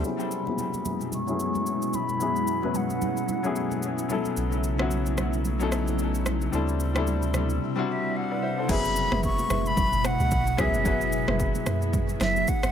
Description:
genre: amapiano.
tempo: 111 BPM.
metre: 4/4.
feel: swing 58% on 16ths.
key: F# minor.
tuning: A4 = 437 Hz.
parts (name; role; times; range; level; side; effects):
clear grand piano; accompaniment; 0.0-12.7 s; F#3 to E5; -30 LUFS; left 5 dB; low-pass filter, dub echo.
ethereal airy pad; sustained chords; 0.0-12.7 s; F#2 to E4; -31 LUFS; equal; ensemble chorus, built-in reverb, sidechain pumping, low-pass filter.
deep log drum bass; bass; 0.0, 8.7-12.7 s; F#1 to F#2; -29 LUFS; equal; none.
deep house drum kit; drums; 0.0-12.7 s; crash cymbal, kick drum, rim click, shaker, snare drum, toms; -30 LUFS; equal; overdrive.
breathy silver concert flute; melody; 0.1-4.1, 7.9-12.7 s; E5 to C#6; -29 LUFS; equal; low-pass filter, dub echo.
congas; percussion; 0.5-12.5 s; none; -37 LUFS; right 4 dB; dub echo.
saturated sub bass; bass; 4.4-7.6 s; B1 to D2; -27 LUFS; equal; none.
marimba with medium mallets; stabs; 8.7-11.8 s; G#4 to E5; -35 LUFS; right 2 dB; dub echo.
room: small room ambience.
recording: echo-heavy mix.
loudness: -24 LUFS.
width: side -8 dB against mid.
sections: 0.0-8.7 A section; 8.7-12.7 B section.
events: filter sweep 0.0-8.7; drop 8.7-12.7.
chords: 0.0 F#9sus4; 4.1 B9sus4; 6.5 D9sus4; 8.7 F#9sus4.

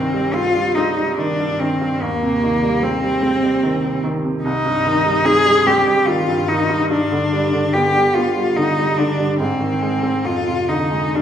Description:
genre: classical, romantic duo for cello and grand piano.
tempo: 73 BPM.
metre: 3/4.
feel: uneven beats, rubato.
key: C minor.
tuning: A4 = 443 Hz.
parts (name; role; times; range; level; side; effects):
clear cello; melody; 0.0-11.2 s; Bb3 to Ab4; -17 LUFS; left 1 dB; none.
bright baby grand piano; accompaniment; 0.0-11.2 s; C2 to C4; -20 LUFS; right 2 dB; none.
room: wet recital hall reverb, RT60 1.4 s.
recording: heard from further back in the room.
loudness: -15 LUFS.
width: side -9 dB against mid.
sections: 0.0-11.2 A section.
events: none.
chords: 0.0 Cm; 2.0 Cm/Eb; 4.4 Cm; 6.9 G; 9.4 Ab; 10.2 Dm7b5/F.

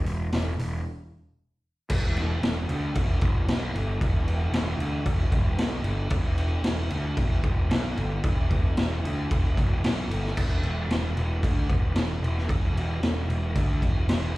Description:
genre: garage rock duo or trio.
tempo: 113 BPM.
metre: 4/4.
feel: straight.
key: unclear.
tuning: A4 = 436 Hz.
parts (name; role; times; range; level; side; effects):
fuzz picked electric bass; bass; 0.0-14.3 s; E1 to D2; -27 LUFS; equal; overdrive.
raw garage drum kit; drums; 0.1-14.2 s; crash cymbal, hi-hat, kick drum, snare drum; -26 LUFS; equal; none.
room: little or no reverb.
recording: live gig heard through the venue's PA, club reverb.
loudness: -23 LUFS.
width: side -18 dB against mid.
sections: 0.0-1.9 A section; 1.9-10.4 B section; 10.4-14.4 C section.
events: break 0.8-1.9.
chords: none.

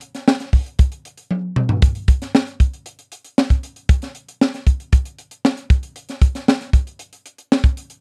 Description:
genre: pop.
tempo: 116 BPM.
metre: 4/4.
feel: straight.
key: none.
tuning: none.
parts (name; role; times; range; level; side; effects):
crisp fusion drum kit; drums; 0.0-8.0 s; hi-hat, kick drum, snare drum, toms; -17 LUFS; equal; none.
room: moderate booth ambience, RT60 0.2 s.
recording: dry, close 1970s-style studio recording.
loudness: -19 LUFS.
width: mono.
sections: 0.0-8.0 A section.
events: drum fill 1.3-1.8.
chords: none.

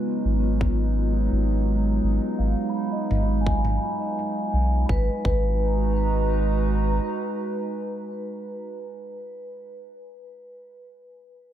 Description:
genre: ambient dub.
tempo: 84 BPM.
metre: 4/4.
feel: straight.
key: G# minor.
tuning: A4 = 440 Hz.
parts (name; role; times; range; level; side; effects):
warbly tape-like pad; sustained chords; 0.0-8.5 s; F#3 to A#5; -28 LUFS; right 4 dB; chorus, built-in reverb.
vibraphone with soft mallets; arpeggios; 0.0-10.3 s; B3 to B5; -30 LUFS; left 3 dB; low-pass filter, tape echo.
soft dub sub bass; bass; 0.3-7.0 s; G#1 to B1; -22 LUFS; equal; none.
electronic kick drum; drums; 0.6-5.5 s; none; -27 LUFS; equal; none.
electronic toms; drums; 3.1-3.8 s; none; -32 LUFS; equal; none.
room: little or no reverb.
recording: echo-heavy mix.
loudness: -22 LUFS.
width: side -11 dB against mid.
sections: 0.0-4.9 A section; 4.9-7.8 B section.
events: filter sweep on vibraphone 0.0-4.9.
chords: 0.0 G#m7.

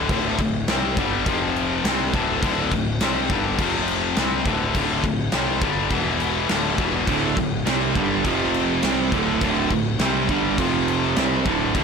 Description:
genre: heavy metal.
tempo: 103 BPM.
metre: 4/4.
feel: straight.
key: D minor.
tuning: A4 = 440 Hz.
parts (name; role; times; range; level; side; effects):
high-gain distorted guitar; riff; 0.0-11.8 s; D2 to C4; -24 LUFS; left 12 dB; distortion.
tight distorted guitar; riff; 0.0-11.8 s; D2 to C4; -27 LUFS; right 1 dB; distortion.
fuzz picked electric bass; bass; 0.0-11.8 s; D1 to C2; -29 LUFS; equal; overdrive, transformer saturation.
big rock drum kit; drums; 0.1-11.8 s; crash cymbal, kick drum, snare drum; -24 LUFS; equal; none.
distorted electric guitar; riff; 7.1-11.8 s; D2 to C4; -23 LUFS; right 12 dB; distortion.
room: little or no reverb.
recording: blown-out, overdriven recording, overdrive.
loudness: -19 LUFS.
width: side -6 dB against mid.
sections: 0.0-11.8 A section.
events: none.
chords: 0.0 D5; 1.3 F5; 1.8 D5; 3.6 F5; 4.2 D5; 5.9 E5; 6.5 D5; 8.2 F5; 8.8 D5; 10.6 F5; 11.2 D5.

